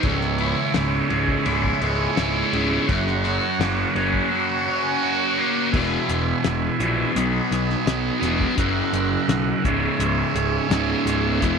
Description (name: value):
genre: psychedelic rock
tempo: 84 BPM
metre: 4/4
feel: straight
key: C# dorian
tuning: A4 = 444 Hz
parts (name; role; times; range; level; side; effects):
- combo organ; sustained chords; 0.0-11.6 s; B3 to A#5; -26 LUFS; right 10 dB; none
- fuzz guitar; riff; 0.0-11.6 s; C#2 to F#4; -22 LUFS; left 1 dB; distortion, phaser
- fuzz picked electric bass; bass; 0.0-11.6 s; C#1 to B1; -25 LUFS; equal; overdrive
- cloth-damped thuddy drum kit; drums; 0.0-11.6 s; crash cymbal, hi-hat, kick drum, ride cymbal, snare drum; -28 LUFS; left 3 dB; none
room: light reverb, small room reverb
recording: 1960s-style stereo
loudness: -19 LUFS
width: side -6 dB against mid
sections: 0.0-5.7 A section; 5.7-11.6 B section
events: none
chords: 0.0 C#m; 2.9 F#; 5.7 E; 7.2 B6; 8.6 F#7; 9.6 C#m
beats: | 0.04 0.75 1.47 2.18 | 2.89 3.60 4.31 5.02 | 5.73 6.45 7.16 7.87 | 8.58 9.29 10.00 10.71 | 11.42